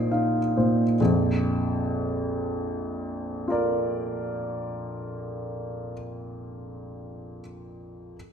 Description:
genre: classical, impressionist solo piano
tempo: 24 BPM (dotted quarters)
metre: 6/8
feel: rubato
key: Bb major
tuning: A4 = 440 Hz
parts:
  - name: clear baby grand piano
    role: solo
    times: 0.0-8.2 s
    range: Bb1 to D7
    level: -25 LUFS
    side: equal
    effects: none
room: wet recital hall reverb, RT60 1.6 s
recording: none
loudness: -24 LUFS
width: side -7 dB against mid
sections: 1.0-5.9 A section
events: none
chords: 0.0 Cm11/Bb; 1.0 Bb

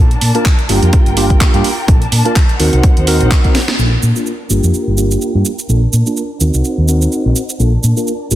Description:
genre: filtered disco house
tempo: 126 BPM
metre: 4/4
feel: swing 56% on 16ths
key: Bb major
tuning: A4 = 440 Hz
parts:
  - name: tine electric piano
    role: accompaniment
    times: 0.0-8.4 s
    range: Bb3 to Bb4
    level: -18 LUFS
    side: right 1 dB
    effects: phaser, sidechain pumping, low-pass filter
  - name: dark studio string section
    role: sustained chords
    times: 0.0-8.4 s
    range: D4 to A5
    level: -24 LUFS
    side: left 1 dB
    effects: sidechain pumping, low-pass filter
  - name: hollow-body short-scale fingered electric bass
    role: bass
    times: 0.0-8.4 s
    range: G1 to Bb2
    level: -13 LUFS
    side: equal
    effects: sidechain pumping, low-pass filter
  - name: house drum kit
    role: drums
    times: 0.1-8.4 s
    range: handclaps, hi-hat, shaker, snare drum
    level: -19 LUFS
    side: right 2 dB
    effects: none
  - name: electronic kick drum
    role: drums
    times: 0.5-3.5 s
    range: none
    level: -10 LUFS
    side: equal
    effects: none
room: digital ambience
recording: dense, heavily limited modern master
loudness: -10 LUFS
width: side -13 dB against mid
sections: 0.0-3.8 A section; 3.8-8.4 B section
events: drum fill 3.5; band accent 3.7; filter sweep 3.8-8.4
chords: 0.0 Bbmaj7; 0.7 Gm7; 1.9 Bbmaj7; 2.6 Ebm6; 3.8 Bbmaj7; 4.5 Gm7; 5.7 Bbmaj7; 6.4 Ebm6; 7.6 Bbmaj7

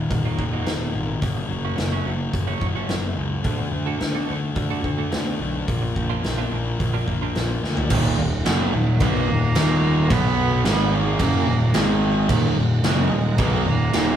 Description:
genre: quiet-loud alternative rock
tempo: 108 BPM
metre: 4/4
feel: straight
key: Eb harmonic minor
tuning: A4 = 438 Hz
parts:
  - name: thick fuzz guitar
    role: riff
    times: 0.0-14.2 s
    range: Eb2 to D4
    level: -24 LUFS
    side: left 3 dB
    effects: distortion
  - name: fuzz picked electric bass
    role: bass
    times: 0.0-14.2 s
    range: Eb1 to D2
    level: -26 LUFS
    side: right 1 dB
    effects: overdrive
  - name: twelve-string electric guitar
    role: arpeggios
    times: 0.1-7.5 s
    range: Eb3 to A4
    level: -32 LUFS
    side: right 10 dB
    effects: tremolo
  - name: big rock drum kit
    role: drums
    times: 0.1-14.1 s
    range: crash cymbal, hi-hat, kick drum, snare drum, toms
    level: -24 LUFS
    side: equal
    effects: none
  - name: string machine, violins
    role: sustained chords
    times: 7.9-14.2 s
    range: B3 to Eb6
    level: -33 LUFS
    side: right 4 dB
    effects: none
  - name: crunchy overdriven guitar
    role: riff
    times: 7.9-14.2 s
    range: Eb2 to Cb4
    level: -26 LUFS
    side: right 7 dB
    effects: none
  - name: raw garage guitar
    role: riff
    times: 7.9-14.2 s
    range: Eb2 to Cb4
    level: -27 LUFS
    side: right 2 dB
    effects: overdrive
  - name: bright cello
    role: melody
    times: 8.5-14.2 s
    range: Gb3 to Cb4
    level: -27 LUFS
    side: right 4 dB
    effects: none
room: light reverb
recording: band playing live in one room, vinyl crackle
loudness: -19 LUFS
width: side -10 dB against mid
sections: 0.0-7.9 A section; 7.9-14.2 B section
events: drum fill 7.6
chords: 0.0 Ebm; 1.2 Gbm; 3.5 D; 5.7 Bb; 7.9 Ebm; 10.1 B5; 10.7 Ab5; 11.2 Ebm; 11.7 Ab5; 12.3 Ebm

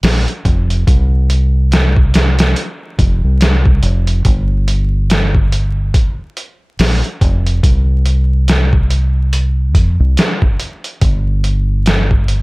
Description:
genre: trip hop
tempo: 71 BPM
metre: 4/4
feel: swing 59% on 16ths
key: unclear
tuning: A4 = 439 Hz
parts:
  - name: deep dub fingered electric bass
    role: bass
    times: 0.0-12.4 s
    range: F1 to F2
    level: -12 LUFS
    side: equal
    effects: tube saturation
  - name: trip hop sampler-style drum kit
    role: drums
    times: 0.0-12.4 s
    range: hi-hat, kick drum, snare drum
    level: -14 LUFS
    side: equal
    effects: none
room: little or no reverb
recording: vinyl crackle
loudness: -11 LUFS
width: side -24 dB against mid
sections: 0.0-12.4 A section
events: none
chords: none

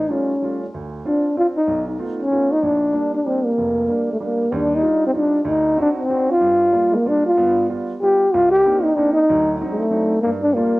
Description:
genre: jazz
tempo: 189 BPM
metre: 3/4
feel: swing 62% on 8ths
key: Bb major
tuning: A4 = 442 Hz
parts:
  - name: breathy trombone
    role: melody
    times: 0.0-10.8 s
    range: Ab3 to G4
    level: -16 LUFS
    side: equal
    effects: cassette tape
  - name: clear upright piano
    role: accompaniment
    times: 0.0-10.8 s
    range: F1 to F#4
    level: -25 LUFS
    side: right 2 dB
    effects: cassette tape
room: moderate spring reverb, RT60 2.0 s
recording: home recording on cassette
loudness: -16 LUFS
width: side -20 dB against mid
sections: 0.0-4.5 A section; 4.5-10.8 B section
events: none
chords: 0.0 Aaug7; 0.7 Dm7; 1.7 B7#11; 2.6 Bb6; 4.5 Ebmaj9; 5.5 D7b9; 6.4 Gm7; 7.4 G7; 8.3 Cm9; 9.3 D7b9; 10.2 Gm7

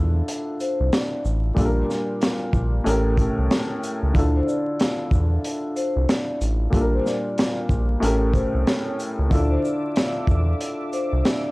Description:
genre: hip hop, boom-bap hip-hop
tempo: 93 BPM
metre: 4/4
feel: swing 62% on 16ths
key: D harmonic minor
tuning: A4 = 440 Hz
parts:
  - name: dark upright piano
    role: accompaniment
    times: 0.0-11.5 s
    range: A2 to Bb4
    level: -25 LUFS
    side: left 1 dB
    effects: cassette tape, high-pass filter, low-pass filter
  - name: round analog bass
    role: bass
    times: 0.0-11.2 s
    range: A1 to E2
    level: -21 LUFS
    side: equal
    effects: none
  - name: crunchy breakbeat drum kit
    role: drums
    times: 0.3-11.4 s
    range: hi-hat, kick drum, shaker, snare drum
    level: -23 LUFS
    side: equal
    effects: none
  - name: vibraphone with soft mallets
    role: melody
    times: 0.6-11.5 s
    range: C5 to D5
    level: -29 LUFS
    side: left 1 dB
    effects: high-pass filter, low-pass filter
  - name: tonewheel organ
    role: sustained chords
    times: 9.3-11.5 s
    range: D4 to D6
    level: -33 LUFS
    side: right 1 dB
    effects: chorus vibrato, wide subtle chorus, high-pass filter, low-pass filter
room: little or no reverb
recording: dry, gritty hardware recording, vinyl crackle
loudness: -20 LUFS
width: side -23 dB against mid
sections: 0.0-11.5 A section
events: none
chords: 0.0 Dmadd9; 1.6 Bb6; 2.9 A7b9; 4.1 Dmadd9; 6.7 Bb6; 8.0 A7b9; 9.3 Dmadd9

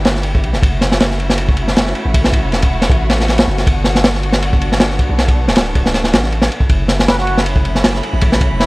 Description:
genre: drum and bass, jungle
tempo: 158 BPM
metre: 4/4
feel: swing 53% on 16ths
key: F# phrygian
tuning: A4 = 439 Hz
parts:
  - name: warm symphonic string section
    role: sustained chords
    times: 0.0-8.7 s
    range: F#3 to G4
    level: -23 LUFS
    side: left 1 dB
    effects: none
  - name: long sustained 808-style bass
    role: bass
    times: 0.0-8.7 s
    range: D1 to B1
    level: -18 LUFS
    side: equal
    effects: none
  - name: crunchy breakbeat drum kit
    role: drums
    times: 0.0-8.7 s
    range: kick drum, ride cymbal, snare drum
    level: -13 LUFS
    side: equal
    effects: none
  - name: drifting glass-harmonics texture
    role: texture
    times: 7.0-8.7 s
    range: B5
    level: -29 LUFS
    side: right 4 dB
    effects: chorus, built-in reverb
  - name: trumpet with plunger mute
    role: melody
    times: 7.1-8.7 s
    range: E4 to B4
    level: -21 LUFS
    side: right 1 dB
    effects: dub echo
room: studio ambience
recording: dry, gritty hardware recording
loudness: -12 LUFS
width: side -22 dB against mid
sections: 0.0-8.7 A section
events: none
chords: 0.0 Em7; 0.6 F#m7; 3.7 Gmaj7; 6.7 F#m7

